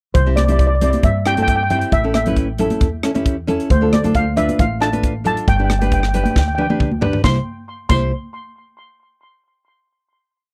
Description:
calypso; 135 BPM; 4/4; straight; C major; A4 = 440 Hz
steel pan; melody; 0.1-8.1 s; C5 to C6; -23 LUFS; equal; tape echo
upright bass; bass; 0.1-8.1 s; G1 to G2; -22 LUFS; equal
crisp fusion drum kit; drums; 0.1-8.0 s; crash cymbal, hi-hat, kick drum, rim click, snare drum, toms; -21 LUFS; equal
nylon-string guitar; accompaniment; 0.3-8.1 s; C4 to C5; -24 LUFS; equal
congas; percussion; 0.4-8.1 s; -26 LUFS; equal
little or no reverb; dry, close 1970s-style studio recording; -17 LUFS; mono
0.2-7.2 verse; 7.2-9.0 final chord
drum fill 6.4-7.2
0.2 C; 1.9 A; 3.7 Dm; 5.5 G; 7.2 C

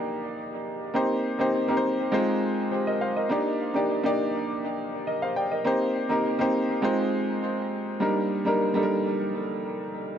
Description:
afrobeats; 102 BPM; 4/4; straight; Eb major; A4 = 443 Hz
warm grand piano; solo; 0.0-10.2 s; G3 to G5; -24 LUFS; equal; dub echo
wet spring reverb, RT60 1.2 s, studio ambience; echo-heavy mix; -24 LUFS; side -9 dB against mid
0.0-10.2 A section
0.0 Ebmaj7; 1.0 Cm7; 2.1 Fm7; 3.3 Ebmaj7; 5.7 Cm7; 6.8 Fm7; 8.0 Ebmaj7

